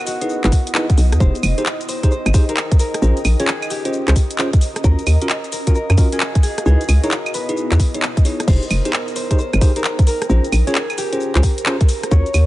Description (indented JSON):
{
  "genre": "UK garage, two-step garage",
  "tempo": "132 BPM",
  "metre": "4/4",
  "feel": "swing 65% on 16ths",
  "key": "unclear",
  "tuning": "A4 = 440 Hz",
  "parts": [
    { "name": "concert harp", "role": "melody", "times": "0.0-12.5 s", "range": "Gb4 to Db5", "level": "-27 LUFS", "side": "left 2 dB", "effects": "digital delay" },
    { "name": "airy breathy pad", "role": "sustained chords", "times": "0.0-12.5 s", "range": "Bb4 to Eb5", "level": "-30 LUFS", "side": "right 5 dB", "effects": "chorus, sidechain pumping" },
    { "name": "ethereal airy pad", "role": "texture", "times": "0.0-12.5 s", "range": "Cb4 to Bb5", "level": "-31 LUFS", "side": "left 1 dB", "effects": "ensemble chorus, built-in reverb, sidechain pumping" },
    { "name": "garage drum kit", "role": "drums", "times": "0.1-12.5 s", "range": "claves, crash cymbal, handclaps, hi-hat, rim click, shaker", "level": "-23 LUFS", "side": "equal", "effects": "none" },
    { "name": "bell-like tine electric piano", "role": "stabs", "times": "0.2-12.3 s", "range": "Db4 to Db5", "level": "-24 LUFS", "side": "equal", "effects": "digital delay" },
    { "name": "hollow knocking FM bass", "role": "bass", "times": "0.4-12.4 s", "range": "F1 to Gb2", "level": "-14 LUFS", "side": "equal", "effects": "none" },
    { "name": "electronic kick drum", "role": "drums", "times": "0.5-12.2 s", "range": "none", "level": "-14 LUFS", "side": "equal", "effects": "none" }
  ],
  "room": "little or no reverb",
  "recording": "nothing above 10.9 kHz",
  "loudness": "-14 LUFS",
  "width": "side -16 dB against mid",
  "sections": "0.0-12.5 A section",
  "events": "none",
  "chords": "0.0 Dbm9 (rootless); 1.2 Fm9 (rootless); 3.0 Bbm9; 4.8 Ebm9; 6.7 Dbm9; 8.5 Fm9 (rootless); 10.3 Bbm9"
}